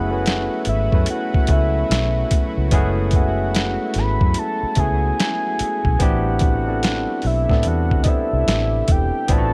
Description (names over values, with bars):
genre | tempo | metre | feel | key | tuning
R&B, neo-soul | 73 BPM | 4/4 | swing 63% on 16ths | F# minor | A4 = 438 Hz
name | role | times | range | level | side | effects
soft octave-layered synth lead | melody | 0.0-9.5 s | D#5 to B5 | -27 LUFS | equal | chorus
barky tine electric piano | accompaniment | 0.0-9.5 s | G#3 to B4 | -26 LUFS | equal | none
lush unison pad | sustained chords | 0.0-9.5 s | C3 to B4 | -35 LUFS | equal | chorus
vintage muted fingered electric bass | bass | 0.0-9.5 s | E1 to A2 | -24 LUFS | equal | none
boom bap sampler-style drum kit | drums | 0.3-9.5 s | hi-hat, kick drum, snare drum | -22 LUFS | equal | none
room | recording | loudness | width
digital ambience | none | -19 LUFS | mono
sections
0.0-9.5 A section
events
none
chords
0.0 F#m11; 6.0 Am11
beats
0.25 1.07 1.89 | 2.71 3.54 4.36 5.18 | 6.00 6.83 7.65 8.47 | 9.29